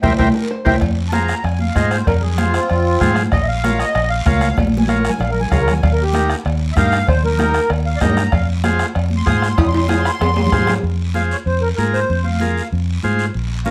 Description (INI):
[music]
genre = latin, cumbia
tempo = 192 BPM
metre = 4/4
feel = straight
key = F minor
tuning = A4 = 440 Hz
[part]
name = accordion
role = melody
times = 0.0-13.7 s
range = C4 to Eb6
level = -23 LUFS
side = equal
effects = light tremolo tuning, plate reverb
[part]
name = overdriven combo organ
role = accompaniment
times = 0.0-13.7 s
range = Db4 to Db5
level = -24 LUFS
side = equal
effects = none
[part]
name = vintage muted fingered electric bass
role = bass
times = 0.0-13.7 s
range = Bb1 to Ab2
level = -21 LUFS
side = equal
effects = none
[part]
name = bombo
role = percussion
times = 0.0-10.8 s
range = none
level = -23 LUFS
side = equal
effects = none
[part]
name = congas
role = percussion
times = 0.0-13.7 s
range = none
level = -25 LUFS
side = equal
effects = none
[part]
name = guiro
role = percussion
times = 0.0-13.7 s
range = none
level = -37 LUFS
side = equal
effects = none
[part]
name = timbales and cowbell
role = percussion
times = 0.0-10.8 s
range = none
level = -27 LUFS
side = equal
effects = none
[part]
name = open-back banjo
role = second line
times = 0.2-0.8 s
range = G4 to C5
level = -31 LUFS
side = equal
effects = none
[sound]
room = moderate studio reverb, RT60 0.7 s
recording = none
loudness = -17 LUFS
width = mono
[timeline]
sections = 0.8-10.8 A section; 10.8-13.7 B section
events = band accent 0.0-0.8; drum fill 0.0-0.8, 4.6-5.8, 9.6-10.8; accordion solo 0.8-10.8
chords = 0.0 C7; 0.8 Fm; 3.3 Bbm; 5.8 Eb; 8.3 Fm